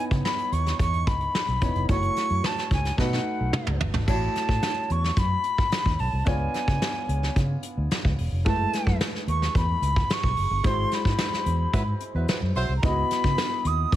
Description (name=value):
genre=polished 1980s jazz-funk pop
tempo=110 BPM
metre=4/4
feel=straight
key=unclear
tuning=A4 = 441 Hz
part: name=silver concert flute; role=melody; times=0.0-14.0 s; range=F#5 to D#6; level=-28 LUFS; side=equal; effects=none
part: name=warm concert grand piano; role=accompaniment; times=0.0-14.0 s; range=G#3 to D#5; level=-32 LUFS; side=equal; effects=wide subtle chorus
part: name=vintage muted fingered electric bass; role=bass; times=0.1-14.0 s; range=E1 to C#3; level=-26 LUFS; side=equal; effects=none
part: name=vintage brush drum kit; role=drums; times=0.1-14.0 s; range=crash cymbal, hi-hat, kick drum, snare drum, toms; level=-27 LUFS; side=equal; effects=none
part: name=dark horn section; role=second line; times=11.7-12.7 s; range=F#3 to B#4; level=-32 LUFS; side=right 2 dB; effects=none
room=studio ambience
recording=none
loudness=-22 LUFS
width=side -13 dB against mid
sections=0.0-4.1 A section; 4.1-14.0 B section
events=drum fill 3.0-4.1; band accent 10.6-12.8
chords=0.0 C#m9; 1.9 F#m7; 3.0 B7; 4.1 A6; 6.3 C#7b9; 8.5 F#m11; 10.6 G#7alt; 12.8 C#m11